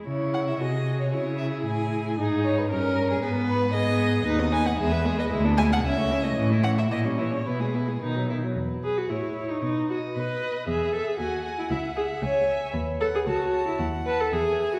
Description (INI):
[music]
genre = quick classical-period movement for string quartet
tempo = 114 BPM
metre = 2/4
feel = rubato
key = C# minor, E major from 4.3 s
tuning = A4 = 440 Hz
[part]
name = warm viola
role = accompaniment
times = 0.0-14.8 s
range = D#3 to C#5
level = -30 LUFS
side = equal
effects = none
[part]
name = rich violin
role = second line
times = 0.1-14.8 s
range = C#4 to A5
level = -35 LUFS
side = equal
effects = none
[part]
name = rich cello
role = bass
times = 0.1-14.8 s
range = C#2 to C#3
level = -30 LUFS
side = equal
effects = none
[part]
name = warm violin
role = melody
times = 0.3-14.8 s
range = G#4 to G#5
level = -34 LUFS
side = equal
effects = none
[sound]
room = wet scoring stage reverb, RT60 1.9 s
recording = heard from further back in the room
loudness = -26 LUFS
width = mono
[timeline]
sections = 0.1-8.6 A section; 8.6-14.8 B section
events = none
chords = 0.1 C#m; 0.6 G#7/B#; 1.1 C#m; 2.2 G#5; 2.7 Gdim; 3.2 G#m; 4.3 B/D#; 4.8 E; 5.3 E7/D; 5.8 A/C#; 6.4 A; 6.9 A#dim7; 7.5 E/B; 8.0 B; 8.6 E5; 9.1 A; 9.6 B; 10.7 E; 11.2 G#5/D#; 11.7 C#m; 12.7 B/D#; 13.3 A/C#; 13.8 D#dim